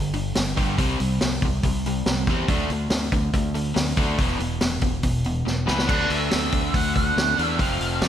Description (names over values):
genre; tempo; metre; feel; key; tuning
classic rock; 141 BPM; 4/4; straight; unclear; A4 = 438 Hz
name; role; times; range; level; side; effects
overdriven electric guitar; riff; 0.0-8.1 s; E2 to D4; -26 LUFS; left 1 dB; none
growling fingered electric bass; bass; 0.0-8.1 s; E1 to F2; -27 LUFS; equal; overdrive
vintage drum kit; drums; 0.1-8.1 s; crash cymbal, hi-hat, kick drum, snare drum; -24 LUFS; equal; none
octave-fuzz lead guitar; melody; 5.7-8.1 s; B4 to F#5; -25 LUFS; right 2 dB; distortion, slapback echo
room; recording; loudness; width
light reverb, studio ambience; none; -20 LUFS; side -10 dB against mid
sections
0.0-5.9 A section; 5.9-8.1 B section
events
drum fill 5.5-5.9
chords
0.0 G5; 0.8 C5; 2.5 D5; 4.2 E5; 5.9 D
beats
0.36 | 0.79 1.21 1.64 2.06 | 2.49 2.91 3.34 3.77 | 4.19 4.62 5.04 5.47 | 5.89 6.32 6.75 7.17 | 7.60 8.02